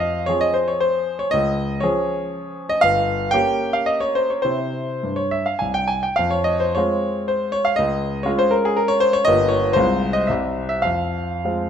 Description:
classical, romantic triple-time dance for piano with dotted rhythms; 93-133 BPM; 3/4; rubato; F minor; A4 = 438 Hz
warm concert grand piano; solo; 0.0-11.7 s; G1 to Ab5; -18 LUFS; equal
moderate recital hall reverb, RT60 1.6 s; close, detailed microphones; -18 LUFS; side -8 dB against mid
0.0-11.7 A section
0.0 Fm; 1.3 Db; 2.8 Gm7b5; 4.5 C; 6.2 Fm; 7.8 Db; 9.3 Gm7b5; 9.8 Fm/C; 10.3 C; 10.8 Fm

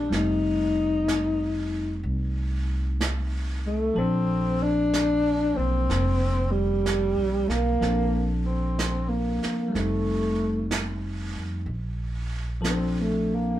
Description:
jazz ballad; 62 BPM; 4/4; swing 66% on 8ths; Bb major; A4 = 441 Hz
breathy tenor saxophone; melody; 0.0-13.6 s; G3 to Eb4; -25 LUFS; left 1 dB
bell-like tine electric piano; accompaniment; 0.0-13.6 s; Eb3 to D5; -30 LUFS; left 2 dB
upright bass; bass; 0.0-13.6 s; F1 to F2; -28 LUFS; right 1 dB
vintage brush drum kit; drums; 0.1-13.6 s; brushed snare drum, hi-hat, snare drum; -34 LUFS; right 3 dB
wet small room reverb, RT60 0.6 s; band playing live in one room; -23 LUFS; side -13 dB against mid
0.0-11.7 A section; 11.7-13.6 B section
tenor saxophone solo 11.7-13.6
0.1 F9; 4.0 Bbmaj9; 9.7 F7; 11.7 Bbmaj9

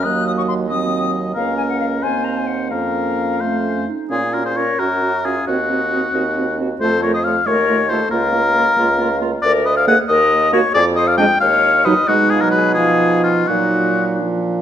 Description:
quick classical-period movement for wind quintet; 82-94 BPM (dotted quarters); 6/8; rubato; Bb minor, Eb minor from 9.4 s; A4 = 440 Hz
silver concert flute; melody; 0.0-14.2 s; Db4 to Gb6; -23 LUFS; left 6 dB
clear oboe; second line; 0.0-14.2 s; F4 to G5; -17 LUFS; left 2 dB
mellow French horn; accompaniment; 0.0-14.6 s; F3 to Db4; -23 LUFS; right 1 dB
clear bassoon; bass; 0.0-14.6 s; Db2 to Cb3; -22 LUFS; right 3 dB
warm clarinet; accompaniment; 0.1-14.6 s; Bb3 to Ab4; -24 LUFS; right 6 dB
wet recital hall reverb, RT60 1.5 s; -14 LUFS; side -10 dB against mid
0.0-4.1 A section; 4.1-14.6 B section
0.0 Cdim/Eb; 1.4 Bbm/Db; 2.0 Ebm6; 2.7 Bbm/F; 3.4 F; 4.1 Bbm; 4.8 Gb; 5.5 Cdim/Eb; 6.8 F; 7.5 F7/Eb; 8.1 Bbm/Db; 9.4 Bb/D; 10.1 Eb5; 10.7 Ddim/F; 11.4 N.C.; 12.1 Abm/Cb; 12.8 Fm7b5/Cb; 13.5 Ebm/Bb

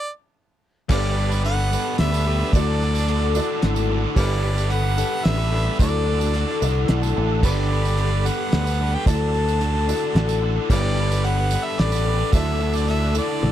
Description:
folk rock and heartland rock; 110 BPM; 3/4; straight; A4 = 440 Hz
bright harmonica; melody; 0.0-13.5 s; D5 to A5; -28 LUFS; right 1 dB
dark baby grand piano; accompaniment; 0.9-13.5 s; E4 to A5; -34 LUFS; right 13 dB
picked twelve-string acoustic guitar; accompaniment; 0.9-13.5 s; D3 to A4; -27 LUFS; left 8 dB
tonewheel organ; sustained chords; 0.9-13.5 s; G4 to E6; -36 LUFS; right 1 dB; slow rotary speaker, overdrive, chorus vibrato
overdriven electric guitar; riff; 0.9-13.5 s; D3 to B4; -27 LUFS; right 2 dB
fingered electric bass; bass; 0.9-13.5 s; G1 to D2; -22 LUFS; equal
cloth-damped thuddy drum kit; drums; 0.9-13.5 s; crash cymbal, hi-hat, kick drum, snare drum, toms; -22 LUFS; equal
tambourine; percussion; 0.9-13.3 s; -37 LUFS; right 15 dB
little or no reverb; dry, close 1970s-style studio recording; -18 LUFS; side -11 dB against mid
0.9-13.5 A section
stop 0.0-0.9; grand piano fill 6.3-7.4
0.0 N.C.; 0.9 Gadd9; 2.5 Dadd9; 4.2 Gadd9; 5.8 Dadd9; 7.4 Gadd9; 9.1 Dadd9; 10.7 Gadd9; 12.3 Dadd9

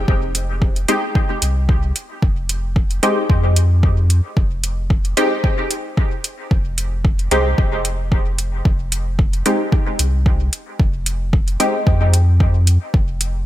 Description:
dub techno; 112 BPM; 4/4; swing 54% on 16ths; F minor; A4 = 441 Hz
pure sine sub bass; bass; 0.0-13.5 s; F1 to F2; -18 LUFS; equal; sidechain pumping
electronic kick drum; drums; 0.1-13.1 s; -17 LUFS; equal; overdrive
electronic hi-hat; drums; 0.3-13.3 s; -21 LUFS; right 1 dB; overdrive
filtered dub chord stab; riff; 0.9-11.8 s; Ab4 to G5; -27 LUFS; left 2 dB; phaser, sidechain pumping, dub echo
filtered dub chord stab; stabs; 0.9-11.7 s; Ab3 to G4; -22 LUFS; equal; chorus, phaser, sidechain pumping, dub echo
light reverb; bright 1980s-style digital production; -15 LUFS; side -14 dB against mid
0.0-13.5 A section
0.0 Fm9

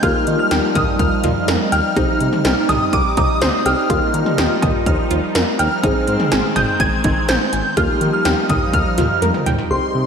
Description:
synth-pop; 124 BPM; 4/4; straight; Eb major; A4 = 441 Hz
shimmering bell with halo; melody; 0.0-10.1 s; C6 to Ab6; -21 LUFS; equal; ensemble chorus, slapback echo, tape echo
dark grand piano; accompaniment; 0.0-10.1 s; Bb3 to Ab4; -24 LUFS; left 1 dB; slapback echo
phased analog pad; sustained chords; 0.0-10.1 s; C3 to Eb4; -22 LUFS; right 1 dB; phaser, chorus
wide unison pluck; arpeggios; 0.0-9.6 s; Eb4 to Eb7; -24 LUFS; right 1 dB; slapback echo, tape echo
smooth synth bass; bass; 0.0-10.0 s; Ab1 to Eb3; -22 LUFS; equal
80s electronic pad drums; drums; 0.0-9.7 s; cowbell, hi-hat, kick drum, snare drum, toms; -20 LUFS; equal; gated reverb on snare and toms
wet lush hall reverb, RT60 2.2 s; big arena sound; -14 LUFS; side -6 dB against mid
0.0-9.7 A section
drum fill 9.2-9.7
0.0 Ebadd9; 2.0 Cm; 3.9 Ebadd9; 5.8 Ab; 7.8 Ebadd9

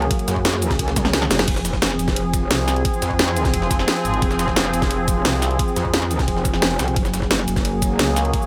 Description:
dark technical drum and bass; 175 BPM; 4/4; straight; F phrygian; A4 = 436 Hz
sweeping resonant pad; sustained chords; 0.0-8.5 s; F3 to Ab4; -26 LUFS; equal; chorus, sidechain pumping
metallic wobble bass; bass; 0.0-8.0 s; F1 to Gb2; -26 LUFS; equal; chorus, overdrive, sidechain pumping
drum and bass drum kit; drums; 0.0-8.5 s; crash cymbal, hi-hat, shaker, snare drum, toms; -24 LUFS; equal; studio reverb
electronic kick drum; drums; 0.1-8.4 s; -26 LUFS; equal; overdrive, studio reverb
jungle sampler-style drum kit; drums; 0.1-8.4 s; ride cymbal, snare drum; -33 LUFS; equal
growling FM bass; bass; 2.5-5.6, 8.0-8.3 s; F1 to Db2; -24 LUFS; equal
light reverb; -20 LUFS; mono
0.0-8.5 A section
drum fill 1.0-1.5
0.0 Gbadd9; 1.5 Fm; 7.0 Gbadd9

